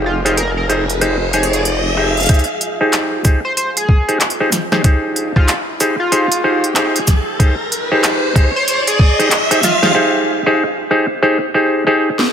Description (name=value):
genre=glitch hop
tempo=94 BPM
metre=4/4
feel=swing 62% on 16ths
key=F minor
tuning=A4 = 444 Hz
part: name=mellow clav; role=stabs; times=0.0-12.1 s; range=Eb4 to Eb5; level=-16 LUFS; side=equal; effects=sidechain pumping, low-pass filter, dub echo
part: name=formant-sweep wobble bass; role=bass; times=0.0-2.3 s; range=F1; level=-20 LUFS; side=equal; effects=chorus, tube saturation
part: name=riser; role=sound effects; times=0.0-10.0 s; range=none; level=-20 LUFS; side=equal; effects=none
part: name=granular cloud pad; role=texture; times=0.0-10.0 s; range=F4 to Eb5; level=-29 LUFS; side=equal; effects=none
part: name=sync lead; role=melody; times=0.1-9.9 s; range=F4 to C5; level=-22 LUFS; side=equal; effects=chorus, cassette tape, dub echo
part: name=drum and bass drum kit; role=drums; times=0.3-12.3 s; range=handclaps, hi-hat, shaker, snare drum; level=-18 LUFS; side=equal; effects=none
part: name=electronic kick drum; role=drums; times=2.3-9.2 s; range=none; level=-11 LUFS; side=equal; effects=overdrive
room=moderate lush hall reverb, RT60 2.4 s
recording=none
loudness=-12 LUFS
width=side -8 dB against mid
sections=0.0-2.3 A section; 2.3-12.3 B section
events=riser 0.0-2.3, 2.3-10.0; build-up 2.3-12.3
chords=0.0 Fm7